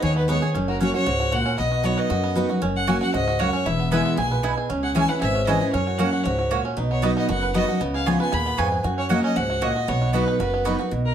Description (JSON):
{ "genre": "bluegrass", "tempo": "232 BPM", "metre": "4/4", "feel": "straight", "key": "B major", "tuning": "A4 = 440 Hz", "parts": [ { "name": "bluegrass banjo", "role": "melody", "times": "0.0-11.0 s", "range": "B3 to B4", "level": "-28 LUFS", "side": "right 5 dB", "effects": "none" }, { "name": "clear fiddle", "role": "melody", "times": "0.0-11.1 s", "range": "A#4 to B5", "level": "-27 LUFS", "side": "left 2 dB", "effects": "none" }, { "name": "picked steel-string acoustic guitar", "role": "accompaniment", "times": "0.0-11.1 s", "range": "E2 to G#4", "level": "-23 LUFS", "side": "left 1 dB", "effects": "none" }, { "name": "upright bass", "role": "bass", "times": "0.0-11.1 s", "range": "E1 to F#2", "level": "-28 LUFS", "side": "equal", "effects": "none" }, { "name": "mandolin", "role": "stabs", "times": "2.9-10.8 s", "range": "A#3 to B5", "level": "-27 LUFS", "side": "right 6 dB", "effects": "none" } ], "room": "moderate studio reverb, RT60 0.5 s", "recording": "lossy compression artefacts", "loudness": "-20 LUFS", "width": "side -9 dB against mid", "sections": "0.0-10.9 A section", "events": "none", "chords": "0.0 G#m; 0.5 F#; 1.6 B; 2.6 F#; 3.7 E; 4.7 C#m; 5.7 F#; 6.8 B; 7.8 C#7; 8.8 F#; 9.9 B" }